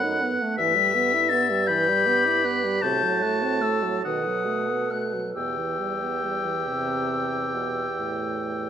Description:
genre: classical, slow romantic movement for wind quintet.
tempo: 45-56 BPM (dotted quarters).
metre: 12/8.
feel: rubato.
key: E minor.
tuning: A4 = 439 Hz.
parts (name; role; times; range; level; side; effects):
mellow concert flute; melody; 0.0-8.7 s; B5 to B6; -26 LUFS; left 8 dB; none.
bright oboe; second line; 0.0-8.7 s; E5 to B5; -28 LUFS; equal; none.
mellow French horn; accompaniment; 0.0-8.7 s; A2 to E4; -30 LUFS; right 3 dB; none.
mellow clarinet; accompaniment; 0.0-8.7 s; F#4 to A4; -33 LUFS; right 9 dB; none.
dark bassoon; bass; 0.0-8.7 s; E2 to B2; -29 LUFS; right 2 dB; none.
room: moderate recital hall reverb, RT60 1.5 s.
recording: none.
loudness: -22 LUFS.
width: side -8 dB against mid.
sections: 0.0-8.7 A section.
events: none.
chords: 0.0 B7/F#; 0.6 Em/G; 2.8 F#dim/A; 4.1 B7; 5.4 Em.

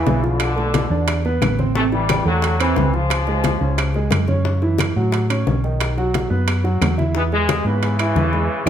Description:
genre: latin, salsa.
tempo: 178 BPM.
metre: 4/4.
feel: straight.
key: E major.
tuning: A4 = 438 Hz.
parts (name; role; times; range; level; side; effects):
brilliant trombone section; melody; 0.0-4.0, 7.2-8.7 s; B2 to B3; -22 LUFS; left 3 dB; none.
warm grand piano; accompaniment; 0.0-8.7 s; C3 to G5; -23 LUFS; right 4 dB; none.
hollow-body short-scale fingered electric bass; bass; 0.0-8.7 s; A1 to A2; -20 LUFS; equal; none.
bongos; percussion; 0.1-8.7 s; none; -28 LUFS; left 6 dB; none.
congas; percussion; 0.1-8.5 s; none; -25 LUFS; left 2 dB; none.
timbales; percussion; 0.1-8.7 s; none; -28 LUFS; right 8 dB; none.
claves; percussion; 0.4-8.7 s; none; -32 LUFS; left 5 dB; none.
room: moderate large studio reverb, RT60 1.2 s.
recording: none.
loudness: -16 LUFS.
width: side -9 dB against mid.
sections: 0.0-8.7 A section.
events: band accent 8.5.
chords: 0.4 Bm7b5; 1.1 E5; 1.8 Am7; 3.1 C#; 4.5 F#m7; 5.8 B; 7.2 E.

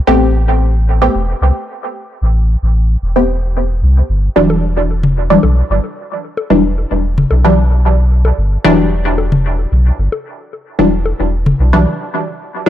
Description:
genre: dub techno.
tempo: 112 BPM.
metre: 4/4.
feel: straight.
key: unclear.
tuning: A4 = 440 Hz.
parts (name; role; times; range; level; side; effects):
filtered dub chord stab; stabs; 0.1-12.7 s; E3 to G4; -14 LUFS; equal; chorus, phaser, dub echo.
soft dub sub bass; bass; 0.1-11.9 s; E1 to C2; -12 LUFS; equal; none.
electronic bongos and toms; percussion; 4.5-11.6 s; none; -18 LUFS; left 2 dB; dub echo.
room: light reverb, digital ambience.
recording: none.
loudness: -11 LUFS.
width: side -11 dB against mid.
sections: 0.0-12.7 A section.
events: break 11.9-12.7.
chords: 0.0 Am9; 4.4 Em9.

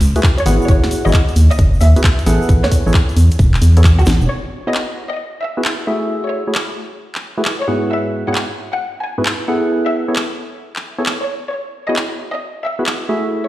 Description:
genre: UK garage, two-step garage.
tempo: 133 BPM.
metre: 4/4.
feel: swing 67% on 16ths.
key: E major.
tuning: A4 = 440 Hz.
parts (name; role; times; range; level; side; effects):
organ-like FM bass; bass; 0.0-4.3 s; E1 to E2; -11 LUFS; equal; none.
garage drum kit; drums; 0.0-13.0 s; handclaps, hi-hat, snare drum; -22 LUFS; equal; none.
egg shaker; percussion; 0.0-4.3 s; none; -34 LUFS; right 2 dB; none.
percussive organ stab; stabs; 0.2-13.5 s; G#2 to F#5; -20 LUFS; equal; chorus, digital delay.
electronic kick drum; drums; 0.2-4.0 s; none; -12 LUFS; equal; none.
rich chamber violin section; melody; 0.4-12.8 s; F#4 to G#5; -24 LUFS; left 1 dB; dub echo.
room: moderate lush hall reverb, RT60 1.6 s.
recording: played on a big sound system in a bare room, stone room reverb.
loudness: -13 LUFS.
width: side -15 dB against mid.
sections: 0.0-4.3 A section; 4.3-13.5 B section.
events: drum fill 4.1; band accent 4.1.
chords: 0.5 Eadd9/G#; 2.3 Amaj7; 4.3 E69; 5.9 F#m9; 7.7 Eadd9/G#; 9.5 Amaj7(no3); 11.5 E69.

